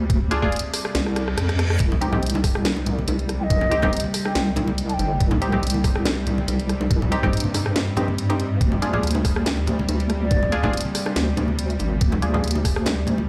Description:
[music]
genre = deep dubstep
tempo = 141 BPM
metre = 4/4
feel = swing 54% on 16ths, half-time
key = C minor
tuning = A4 = 441 Hz
[part]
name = bowed-like drone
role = sustained chords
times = 0.0-13.3 s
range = C3 to G3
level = -32 LUFS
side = equal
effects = built-in reverb
[part]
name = deep soft wobble bass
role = bass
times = 0.0-13.3 s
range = G1 to G2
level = -25 LUFS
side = equal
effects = chorus
[part]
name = electronic kick drum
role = drums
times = 0.1-12.7 s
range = none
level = -24 LUFS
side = equal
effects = studio reverb
[part]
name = garage drum kit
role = drums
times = 0.1-13.2 s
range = hi-hat, rim click, snare drum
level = -30 LUFS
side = equal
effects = studio reverb
[part]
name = filtered dub chord stab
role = stabs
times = 0.3-12.4 s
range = C4 to Ab4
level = -31 LUFS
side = equal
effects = chorus, dub echo
[part]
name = reverse cymbal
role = sound effects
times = 1.1-1.8 s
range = none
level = -35 LUFS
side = equal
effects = none
[part]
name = congas and bongos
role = percussion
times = 1.9-13.3 s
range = none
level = -31 LUFS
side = equal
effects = none
[part]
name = breathy mellow low ney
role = melody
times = 3.4-5.2, 10.2-10.8 s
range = D5 to A5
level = -31 LUFS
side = equal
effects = dub echo
[sound]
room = light reverb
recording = played on a big sound system in a bare room, large studio reverb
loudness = -22 LUFS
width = mono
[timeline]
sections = 0.0-13.3 A section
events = drum fill 0.9-1.8; reverse cymbal 1.1-1.8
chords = 0.0 Ddim; 1.8 Cm; 8.6 Ddim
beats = | 0.10 0.52 0.95 1.37 | 1.80 2.23 2.65 3.08 | 3.50 3.93 4.35 4.78 | 5.20 5.63 6.05 6.48 | 6.91 7.33 7.76 8.18 | 8.61 9.03 9.46 9.88 | 10.31 10.74 11.16 11.59 | 12.01 12.44 12.86 13.29

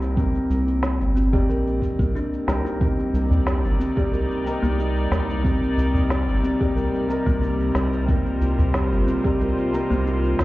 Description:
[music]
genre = organic downtempo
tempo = 91 BPM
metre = 4/4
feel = straight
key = C minor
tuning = A4 = 440 Hz
[part]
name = felt-muted upright piano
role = accompaniment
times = 0.0-10.4 s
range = Eb3 to D5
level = -28 LUFS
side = equal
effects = sidechain pumping, tape echo
[part]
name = round analog bass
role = bass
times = 0.0-10.4 s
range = G1 to C2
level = -22 LUFS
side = equal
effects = sidechain pumping
[part]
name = electronic shaker and snare drum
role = drums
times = 0.0-10.4 s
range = none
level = -31 LUFS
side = equal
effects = none
[part]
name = kalimba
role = arpeggios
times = 0.2-10.2 s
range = Bb3 to Bb4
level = -25 LUFS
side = equal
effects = low-pass filter, tape echo
[part]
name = electronic kick drum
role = drums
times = 0.2-9.4 s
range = none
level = -23 LUFS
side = equal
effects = none
[part]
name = dark studio string section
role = sustained chords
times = 2.8-10.4 s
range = C3 to D5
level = -28 LUFS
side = left 1 dB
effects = sidechain pumping
[part]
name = udu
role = percussion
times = 3.3-10.4 s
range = none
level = -26 LUFS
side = equal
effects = none
[sound]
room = light reverb, small room ambience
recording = heard muffled through a wall, club reverb, EQ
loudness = -19 LUFS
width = side -18 dB against mid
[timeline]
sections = 0.0-10.4 A section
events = none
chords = 0.0 Cm7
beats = | 0.17 0.83 1.49 2.15 | 2.81 3.47 4.13 4.79 | 5.45 6.11 6.76 7.42 | 8.08 8.74 9.40 10.06

